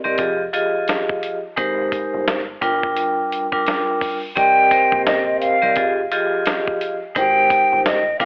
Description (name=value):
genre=hip hop, boom-bap hip-hop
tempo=86 BPM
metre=4/4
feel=swing 61% on 16ths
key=C minor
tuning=A4 = 441 Hz
part: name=vibraphone with hard mallets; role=accompaniment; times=0.0-8.3 s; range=F3 to G5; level=-22 LUFS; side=equal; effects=cassette tape, high-pass filter, low-pass filter
part: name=deep dub fingered electric bass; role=bass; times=0.0-8.3 s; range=F1 to C2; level=-36 LUFS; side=equal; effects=tube saturation
part: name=dusty soul sampler-style drum kit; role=drums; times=0.2-8.3 s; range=hi-hat, kick drum, snare drum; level=-26 LUFS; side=equal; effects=cassette tape
part: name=breathy mellow silver concert flute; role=melody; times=4.4-8.3 s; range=Eb5 to G5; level=-19 LUFS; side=equal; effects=high-pass filter, low-pass filter, cassette tape
room=light reverb, studio reverb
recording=home recording on cassette, telephone sound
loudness=-19 LUFS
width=mono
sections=0.0-4.4 A section; 4.4-8.3 B section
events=none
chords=0.2 Fm7; 1.6 Abmaj7; 2.6 Gm7; 4.4 Cm7; 5.8 Fm7; 7.2 Abmaj7